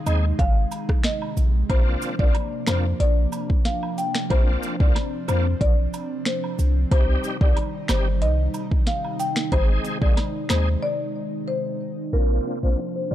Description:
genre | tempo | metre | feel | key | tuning
dancehall | 92 BPM | 4/4 | straight | unclear | A4 = 440 Hz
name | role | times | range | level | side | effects
airy breathy pad | sustained chords | 0.0-13.1 s | C3 to Eb4 | -30 LUFS | right 1 dB | chorus, sidechain pumping
marimba with medium mallets | melody | 0.1-13.1 s | Bb4 to G5 | -28 LUFS | left 3 dB | none
bright tonewheel organ | accompaniment | 0.1-13.1 s | G3 to Ab4 | -31 LUFS | equal | overdrive, chorus vibrato, fast rotary speaker
warm 808-style bass | bass | 0.1-13.1 s | G1 to F2 | -21 LUFS | equal | none
afro-pop drum kit | drums | 0.1-10.7 s | finger snaps, hi-hat, kick drum, rim click, snare drum | -22 LUFS | equal | vintage 12-bit sampler grit
cabasa and woodblock | percussion | 0.1-10.7 s | none | -37 LUFS | right 6 dB | none
room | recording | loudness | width
digital ambience | dark, warm production, low-pass filter | -20 LUFS | side -12 dB against mid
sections
0.0-12.1 A section; 12.1-13.1 B section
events
break 10.8-12.1; filter sweep 12.1-13.1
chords
0.0 Ab; 1.7 Bbadd9; 6.9 Cm; 9.5 Ab; 12.1 Bbadd9

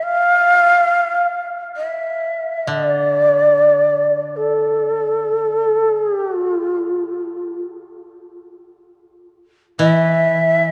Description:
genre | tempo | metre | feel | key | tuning
japanese traditional, Japanese chamber music | free time | none | none | unclear | A4 = 439 Hz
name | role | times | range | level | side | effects
breathy mellow shakuhachi | melody | 0.0-10.7 s | A4 to F5 | -17 LUFS | equal | none
koto | accompaniment | 2.7-6.1, 9.8-10.7 s | D3 to E3 | -24 LUFS | equal | none
room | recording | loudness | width
wet cathedral reverb, RT60 4.7 s | dark, warm production | -17 LUFS | mono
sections
0.0-10.7 A section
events
none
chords
none

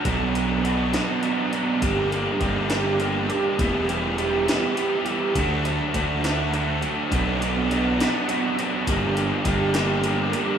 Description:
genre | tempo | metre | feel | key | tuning
indie rock | 68 BPM (dotted quarters) | 6/8 | straight | unclear | A4 = 443 Hz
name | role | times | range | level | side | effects
high-gain distorted guitar | riff | 0.0-10.6 s | G2 to E4 | -28 LUFS | left 10 dB | distortion
raw garage guitar | riff | 0.0-10.6 s | E2 to G4 | -23 LUFS | right 4 dB | overdrive, ensemble chorus
fuzz picked electric bass | bass | 0.1-10.3 s | E1 to D2 | -26 LUFS | equal | overdrive
jungle sampler-style drum kit | drums | 0.1-10.5 s | hi-hat, kick drum, snare drum | -29 LUFS | equal | none
room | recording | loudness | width
light reverb, digital ambience | rough home demo mix, studio reverb | -20 LUFS | side -8 dB against mid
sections
0.0-7.1 A section; 7.1-10.6 B section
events
none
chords
0.1 Bm; 1.8 Gm; 3.6 Em; 5.4 D; 7.1 Bm; 8.9 Gm

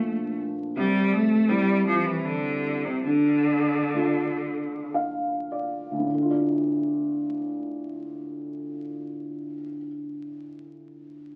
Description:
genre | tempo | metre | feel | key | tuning
celtic folk | 49-83 BPM | 3/4 | rubato | D minor | A4 = 440 Hz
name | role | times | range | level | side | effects
rich cello | melody | 0.0-4.9 s | C3 to A3 | -27 LUFS | equal | none
felt-muted upright piano | accompaniment | 0.0-11.4 s | D2 to F5 | -29 LUFS | equal | none
room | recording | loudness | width
wet club reverb, RT60 0.6 s | very old 78 rpm record, vinyl crackle | -26 LUFS | mono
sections
0.0-6.1 A section; 6.1-9.6 B section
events
slowing down 0.8-6.1; felt piano fill 4.4-6.1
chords
0.0 Bbmaj7; 0.8 C; 3.1 Dm

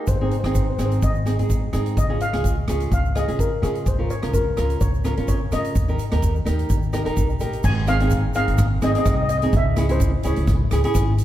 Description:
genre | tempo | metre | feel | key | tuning
calypso | 127 BPM | 4/4 | swing 53% on 16ths | Ab major | A4 = 440 Hz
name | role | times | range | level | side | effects
steel pan | melody | 0.0-10.9 s | Ab4 to Ab5 | -27 LUFS | left 3 dB | none
flamenco guitar | accompaniment | 0.0-11.1 s | C4 to Bb4 | -26 LUFS | right 2 dB | none
upright bass | bass | 0.1-11.2 s | Ab1 to Eb3 | -23 LUFS | equal | none
street-band drum kit | drums | 0.1-11.2 s | crash cymbal, hi-hat, kick drum, rim click | -22 LUFS | equal | none
egg shaker | percussion | 0.1-11.2 s | none | -41 LUFS | right 6 dB | none
room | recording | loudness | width
light reverb | heard from further back in the room | -18 LUFS | side -13 dB against mid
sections
0.0-7.6 A section; 7.6-11.2 B section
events
none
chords
0.1 Ab; 2.0 Db; 3.9 Bbm/Db; 5.8 Eb; 7.6 Ab; 9.5 Dbm

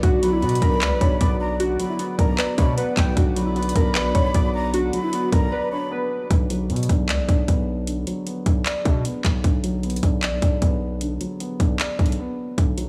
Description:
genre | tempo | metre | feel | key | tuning
hip hop, trap | 153 BPM | 4/4 | half-time | B harmonic minor | A4 = 439 Hz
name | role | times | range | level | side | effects
warbly lo-fi synth keys | melody | 0.0-6.3 s | E4 to D5 | -28 LUFS | equal | chorus, digital delay
felt-muted upright piano | accompaniment | 0.0-12.9 s | D3 to D5 | -29 LUFS | equal | low-pass filter
airy breathy pad | sustained chords | 0.0-6.3 s | B3 to D5 | -36 LUFS | equal | chorus
distorted 808-style bass | bass | 0.0-12.9 s | A#1 to B2 | -27 LUFS | equal | distortion
trap drum kit | drums | 0.0-12.9 s | handclaps, hi-hat, kick drum | -24 LUFS | equal | none
breathy mellow silver concert flute | second line | 0.2-5.9 s | F#5 to B5 | -32 LUFS | equal | digital delay
room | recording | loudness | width
digital ambience | small room ambience | -22 LUFS | mono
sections
0.0-6.3 A section; 6.3-12.9 B section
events
break 5.5-6.3, 12.2-12.6; filter sweep on felt piano 6.3-12.9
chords
0.0 Bm

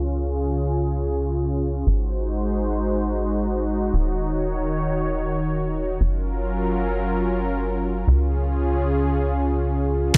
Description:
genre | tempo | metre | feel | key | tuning
synthwave | free time | none | none | unclear | A4 = 441 Hz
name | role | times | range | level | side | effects
warm analog pad | sustained chords | 0.0-10.2 s | Db3 to F5 | -26 LUFS | equal | chorus, sidechain pumping
tight sequencer bass | bass | 0.0-10.2 s | Eb1 to Db2 | -27 LUFS | equal | sidechain pumping
oversized low-tuned drum kit | drums | 10.1-10.2 s | crash cymbal, hi-hat | -22 LUFS | equal | none
room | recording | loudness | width
light reverb, small room ambience | dark, warm production, low-pass filter | -23 LUFS | mono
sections
0.0-10.1 A section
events
filter sweep 0.0-10.1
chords
0.0 Db; 1.9 Ab7; 3.9 Ebm7; 6.0 Gbmaj7; 8.1 Db

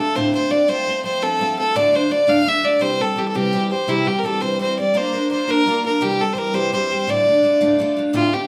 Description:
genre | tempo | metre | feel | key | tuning
celtic folk, Celtic jig | 112 BPM (dotted quarters) | 6/8 | straight | D minor | A4 = 440 Hz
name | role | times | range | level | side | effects
bright fiddle | melody | 0.0-8.5 s | E4 to F5 | -20 LUFS | equal | none
picked steel-string acoustic guitar | accompaniment | 0.0-8.5 s | D2 to Bb4 | -24 LUFS | equal | none
room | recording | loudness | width
wet small room reverb, RT60 0.5 s | heard from further back in the room | -19 LUFS | mono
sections
0.0-8.1 A section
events
none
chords
0.0 Dm7; 0.7 F; 1.7 Dm; 2.8 C; 4.9 Bb; 6.0 C; 7.1 Dm

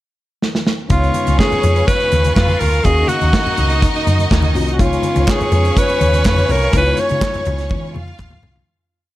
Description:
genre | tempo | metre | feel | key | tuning
disco | 124 BPM | 4/4 | straight | unclear | A4 = 440 Hz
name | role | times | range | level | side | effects
modern studio drum kit | drums | 0.4-8.7 s | handclaps, hi-hat, kick drum, snare drum, toms | -18 LUFS | equal | gated reverb
breathy alto saxophone | melody | 0.9-7.7 s | F4 to Db5 | -18 LUFS | equal | none
rich studio violin section | second line | 0.9-8.7 s | Db4 to F5 | -22 LUFS | equal | none
reed electric piano | accompaniment | 0.9-8.7 s | Db3 to F5 | -24 LUFS | left 4 dB | overdrive, fast tremolo
clear studio string section | sustained chords | 0.9-8.6 s | Gb4 to Db6 | -27 LUFS | equal | none
hollow-body short-scale fingered electric bass | bass | 0.9-8.6 s | C2 to Db3 | -17 LUFS | equal | none
congas | percussion | 0.9-8.6 s | none | -24 LUFS | left 3 dB | none
group handclap | percussion | 5.3-8.3 s | none | -29 LUFS | right 3 dB | none
room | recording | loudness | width
small room ambience | none | -13 LUFS | side -15 dB against mid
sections
0.0-0.9 pickup bar; 0.9-8.7 pre-chorus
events
drum fill 0.4-0.9, 7.7-8.7; fade-out 6.7-8.7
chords
0.0 N.C.; 0.9 Db7; 2.9 Ebm7; 4.8 Db7

